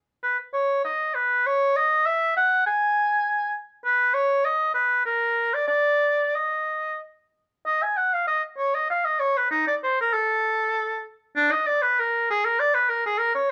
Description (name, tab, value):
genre	classical, baroque-style fantasia for unaccompanied oboe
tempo	88-102 BPM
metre	3/4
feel	rubato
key	G# minor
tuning	A4 = 440 Hz
part	warm oboe	solo	0.2-13.5 s	D4 to Ab5	-23 LUFS	equal	none
room	light reverb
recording	dark, warm production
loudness	-23 LUFS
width	mono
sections	0.0-7.7 A section; 7.7-13.5 B section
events	none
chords	none